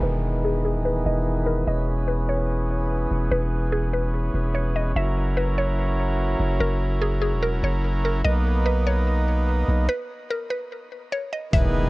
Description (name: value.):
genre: hip hop, atmospheric cloud-rap.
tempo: 146 BPM.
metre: 4/4.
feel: half-time.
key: E lydian.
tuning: A4 = 439 Hz.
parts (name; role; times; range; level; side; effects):
mallet-like synth pluck; melody; 0.0-11.9 s; G#4 to E5; -29 LUFS; equal; chorus, low-pass filter, ping-pong delay.
hand-pumped harmonium; sustained chords; 0.0-11.9 s; D#3 to A#4; -27 LUFS; right 1 dB; sidechain pumping, low-pass filter.
long sustained 808-style bass; bass; 0.0-11.9 s; D#1 to B1; -23 LUFS; equal; none.
downlifter and impact; sound effects; 0.0-1.7, 11.5-11.9 s; none; -36 LUFS; equal; none.
trip hop sampler-style drum kit; drums; 11.5-11.6 s; hi-hat, kick drum; -19 LUFS; equal; none.
room: digital ambience.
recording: worn, warbling old tape, cassette tape, warbly pitch drift.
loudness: -21 LUFS.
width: side -21 dB against mid.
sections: 0.0-11.5 A section.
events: filter sweep 0.0-11.5; stop 9.9-11.5; impact 11.5-11.9.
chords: 0.0 Emaj7; 5.0 F#7; 8.2 Bmaj9.